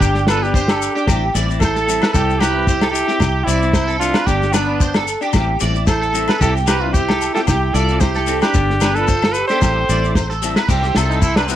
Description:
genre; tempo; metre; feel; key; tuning
highlife guitar band; 112 BPM; 4/4; swing 54% on 16ths; C major; A4 = 440 Hz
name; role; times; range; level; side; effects
warm trumpet; melody; 0.0-11.6 s; B3 to C5; -20 LUFS; equal; none
warm alto saxophone; second line; 0.0-10.4 s; B3 to A4; -26 LUFS; right 10 dB; none
electric guitar through a small old amp; accompaniment; 0.0-11.6 s; G3 to E4; -26 LUFS; left 9 dB; none
electric guitar at the edge of break-up; arpeggios; 0.0-11.6 s; G4 to D5; -22 LUFS; right 4 dB; ensemble chorus, analog delay
fingered electric bass; bass; 0.0-11.6 s; G1 to C2; -21 LUFS; equal; none
warm soul drum kit; drums; 0.0-11.5 s; crash cymbal, kick drum, snare drum; -18 LUFS; equal; none
shekere; percussion; 0.0-11.6 s; none; -26 LUFS; left 5 dB; none
agogo bells; percussion; 0.3-11.5 s; none; -28 LUFS; left 14 dB; none
combo organ; sustained chords; 10.7-11.6 s; E5 to C6; -29 LUFS; equal; none
room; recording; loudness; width
light reverb; none; -14 LUFS; side -11 dB against mid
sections
0.0-10.7 A section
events
none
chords
0.0 G; 1.1 Am7; 2.1 C; 4.3 G; 5.3 Am7; 6.4 C; 8.6 G; 9.6 Am7; 10.7 C

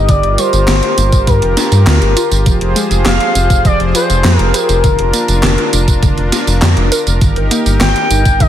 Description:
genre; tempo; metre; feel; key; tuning
synthwave; 101 BPM; 4/4; straight; F dorian; A4 = 443 Hz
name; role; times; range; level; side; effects
expressive portamento lead; melody; 0.0-8.5 s; Bb4 to G5; -16 LUFS; left 2 dB; wide subtle chorus, vintage 12-bit sampler grit, digital delay, shimmer reverb
warm analog pad; sustained chords; 0.0-8.5 s; F3 to C5; -19 LUFS; left 1 dB; chorus, sidechain pumping, shimmer reverb
warbly dusty pluck; arpeggios; 0.0-8.5 s; D3 to Bb4; -21 LUFS; right 3 dB; chorus, digital delay, shimmer reverb
round analog bass; bass; 0.0-8.5 s; F1 to G2; -13 LUFS; equal; sidechain pumping
electronic kick drum; drums; 0.1-8.5 s; none; -12 LUFS; equal; none
gated 80s digital drum machine; drums; 0.1-8.5 s; handclaps, hi-hat, snare drum, tambourine; -16 LUFS; equal; gated reverb, gated reverb snare
room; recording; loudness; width
light reverb; dense, heavily limited modern master; -9 LUFS; side -11 dB against mid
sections
0.0-8.5 A section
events
none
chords
0.1 Gm7; 2.5 Fmadd9; 4.8 Bb/F; 7.2 Eb/G

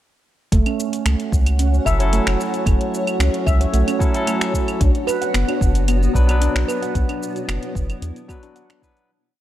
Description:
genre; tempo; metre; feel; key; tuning
organic downtempo; 112 BPM; 4/4; straight; B minor; A4 = 440 Hz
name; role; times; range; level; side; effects
granular cloud pad; sustained chords; 1.3-9.1 s; B3 to F#5; -27 LUFS; equal; built-in reverb, sidechain pumping
handpan; arpeggios; 0.5-8.8 s; A3 to F#5; -24 LUFS; right 2 dB; digital delay
round analog bass; bass; 0.5-8.1 s; F#1 to E2; -18 LUFS; equal; tube saturation
deep house drum kit; drums; 0.5-9.1 s; claves, finger snaps, hi-hat, shaker; -27 LUFS; right 1 dB; none
electronic kick drum; drums; 0.5-8.9 s; none; -19 LUFS; equal; none
barky tine electric piano; accompaniment; 1.9-9.1 s; F#3 to B4; -26 LUFS; left 2 dB; sidechain pumping, digital delay
room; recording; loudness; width
digital ambience; none; -17 LUFS; side -13 dB against mid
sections
0.5-9.1 groove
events
fade-out 6.2-9.1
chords
0.5 F#m7; 4.8 Bm

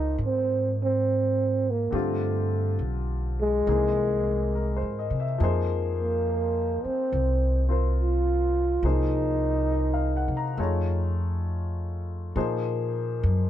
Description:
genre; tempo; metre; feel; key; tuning
jazz ballad; 69 BPM; 4/4; swing 66% on 8ths; F minor; A4 = 440 Hz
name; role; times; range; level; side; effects
breathy trombone; melody; 0.0-10.6 s; Ab3 to F4; -26 LUFS; right 2 dB; none
warm upright piano; accompaniment; 0.0-13.5 s; D3 to Bb5; -31 LUFS; left 5 dB; none
upright bass; bass; 0.0-13.5 s; B1 to C3; -26 LUFS; equal; none
room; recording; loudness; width
little or no reverb; dark, warm production; -23 LUFS; side -11 dB against mid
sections
0.0-12.4 A section; 12.4-13.5 B section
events
none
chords
0.0 Db6 (rootless); 1.9 G5; 3.7 C7alt; 5.4 Ab69; 10.6 F7alt; 12.4 Bb9sus4

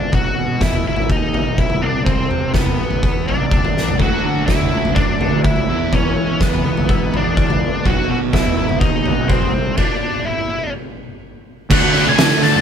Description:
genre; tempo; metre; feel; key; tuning
quiet-loud alternative rock; 124 BPM; 4/4; straight; E mixolydian; A4 = 440 Hz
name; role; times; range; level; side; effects
octave-fuzz lead guitar; melody; 0.0-12.6 s; B3 to A5; -21 LUFS; left 2 dB; distortion
fuzz picked electric bass; bass; 0.1-12.6 s; G#1 to E3; -23 LUFS; right 1 dB; overdrive
oversized low-tuned drum kit; drums; 0.1-12.5 s; crash cymbal, hi-hat, kick drum, snare drum, toms; -17 LUFS; equal; none
twangy electric guitar; arpeggios; 4.0-9.8 s; B2 to E4; -29 LUFS; left 7 dB; phaser
sludgy distorted guitar; riff; 4.0-12.6 s; E2 to D4; -22 LUFS; right 7 dB; overdrive
mellow tonewheel organ; sustained chords; 11.7-12.6 s; F#3 to D5; -27 LUFS; left 1 dB; none
heavy high-gain guitar; riff; 11.7-12.6 s; D3 to D4; -20 LUFS; left 10 dB; distortion
room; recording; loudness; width
light reverb; band playing live in one room; -14 LUFS; side -8 dB against mid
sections
0.0-11.7 A section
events
drum fill 3.8; stop 9.8-11.7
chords
0.1 B; 1.8 C; 4.0 D; 5.7 E; 7.9 B; 9.5 C; 10.7 N.C.; 11.7 D

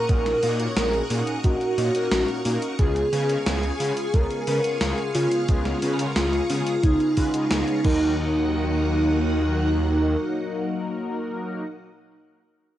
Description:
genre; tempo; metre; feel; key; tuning
synthwave; 89 BPM; 4/4; straight; Eb minor; A4 = 440 Hz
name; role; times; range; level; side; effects
warm velvety synth lead; melody; 0.0-11.6 s; Eb4 to Bb4; -25 LUFS; right 1 dB; chorus, cassette tape, tape echo
string machine, full ensemble; sustained chords; 0.0-11.6 s; Bb3 to Eb6; -32 LUFS; right 1 dB; ensemble chorus, sidechain pumping, cassette tape
mellow synth brass; stabs; 0.0-11.6 s; Bb2 to Eb5; -28 LUFS; left 2 dB; chorus, phaser, cassette tape
wide detuned saw bass; bass; 0.1-10.2 s; Bb1 to Db3; -26 LUFS; equal; chorus
electronic kick drum; drums; 0.1-8.0 s; none; -21 LUFS; equal; cassette tape
gated 80s digital drum machine; drums; 0.1-8.0 s; crash cymbal, hi-hat, snare drum; -29 LUFS; equal; gated reverb, gated reverb snare, cassette tape
room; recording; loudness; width
light reverb; home recording on cassette, nothing above 10.8 kHz; -21 LUFS; side -12 dB against mid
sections
0.0-8.2 A section; 8.2-10.9 B section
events
none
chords
0.0 Gb6/Bb; 2.8 Db7; 7.8 Ebm

